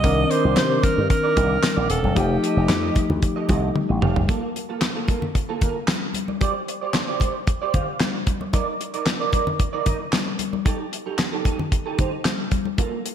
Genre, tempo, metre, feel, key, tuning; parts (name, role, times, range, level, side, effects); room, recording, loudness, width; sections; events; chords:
early-eighties boogie funk; 113 BPM; 4/4; straight; A4 = 440 Hz
breathy alto saxophone; melody; 0.0-3.2 s; G4 to Eb5; -24 LUFS; right 3 dB; diffuse ambient delay
barky tine electric piano; accompaniment; 0.0-4.3 s; Eb3 to Bb4; -24 LUFS; left 4 dB; overdrive
electric guitar at the edge of break-up; riff; 0.0-13.1 s; Bb3 to F5; -27 LUFS; right 6 dB; ensemble chorus
slap bass with an envelope filter; bass; 0.0-4.3 s; Eb1 to C3; -22 LUFS; equal
damped 70s drum kit; drums; 0.0-13.1 s; handclaps, hi-hat, kick drum, snare drum, toms; -22 LUFS; equal
congas; percussion; 0.0-12.9 s; -30 LUFS; left 4 dB
moderate lush hall reverb, RT60 1.7 s, small room ambience; dreamy mix soaked in reverb; -20 LUFS; side -9 dB against mid
0.0-4.3 A section; 4.3-13.1 B section
drum fill 3.8-4.3
0.0 Cm9; 2.2 F9; 4.3 Fadd11/Bb; 6.1 Gsus4; 8.5 Bbadd11/Eb; 10.7 A7(b5, no3)/Eb